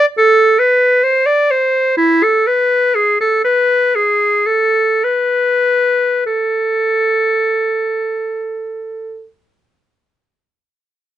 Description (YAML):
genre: classical, baroque-style fantasia for unaccompanied clarinet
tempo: 47-71 BPM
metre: 4/4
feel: rubato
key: A minor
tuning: A4 = 440 Hz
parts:
  - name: bright clarinet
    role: solo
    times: 0.0-9.3 s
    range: E4 to D5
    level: -12 LUFS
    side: equal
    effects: none
room: light reverb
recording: nothing above 10.8 kHz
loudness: -12 LUFS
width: side -11 dB against mid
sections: 0.0-6.2 A section; 6.2-10.9 B section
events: slowing down 0.0-6.2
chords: none